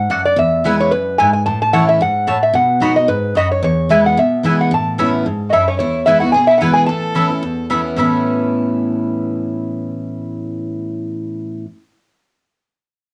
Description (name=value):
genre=bluegrass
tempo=221 BPM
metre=4/4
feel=swing 55% on 8ths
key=A major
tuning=A4 = 439 Hz
part: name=lap resonator guitar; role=melody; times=0.0-7.7 s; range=B4 to A5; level=-17 LUFS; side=equal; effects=cassette tape
part: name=picked steel-string acoustic guitar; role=accompaniment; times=0.0-11.7 s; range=E2 to F#4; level=-20 LUFS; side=equal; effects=cassette tape
part: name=mandolin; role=stabs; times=0.1-11.7 s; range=A3 to B5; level=-23 LUFS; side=equal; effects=cassette tape
part: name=clear fiddle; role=second line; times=5.5-7.7 s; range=C#4 to B4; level=-29 LUFS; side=equal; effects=cassette tape
room=moderate studio reverb, RT60 0.7 s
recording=home recording on cassette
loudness=-16 LUFS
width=mono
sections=0.0-5.8 A section; 5.8-8.0 B section; 8.0-10.1 C section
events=none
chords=0.4 E; 1.5 A; 2.5 B; 3.6 E; 4.7 Aadd9; 5.8 E; 6.9 Aadd9